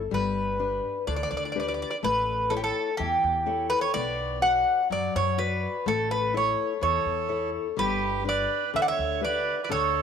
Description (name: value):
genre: greek folk, Greek bouzouki band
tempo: 125 BPM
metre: 4/4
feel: straight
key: unclear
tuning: A4 = 440 Hz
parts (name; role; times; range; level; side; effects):
- upright bass; bass; 0.0-10.0 s; G1 to F#2; -34 LUFS; equal; none
- Greek bouzouki; melody; 0.1-10.0 s; G4 to F#5; -26 LUFS; equal; none
- fingerpicked steel-string acoustic guitar; accompaniment; 0.1-10.0 s; D3 to D5; -32 LUFS; left 11 dB; none
- accordion; second line; 6.8-10.0 s; G4 to D5; -31 LUFS; right 12 dB; none
room: moderate plate reverb, RT60 3.2 s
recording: 1960s-style stereo with parts hard left and right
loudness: -24 LUFS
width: side -7 dB against mid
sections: 0.1-10.0 A section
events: none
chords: 0.1 G; 2.0 A; 3.9 Bm; 5.9 A; 7.8 G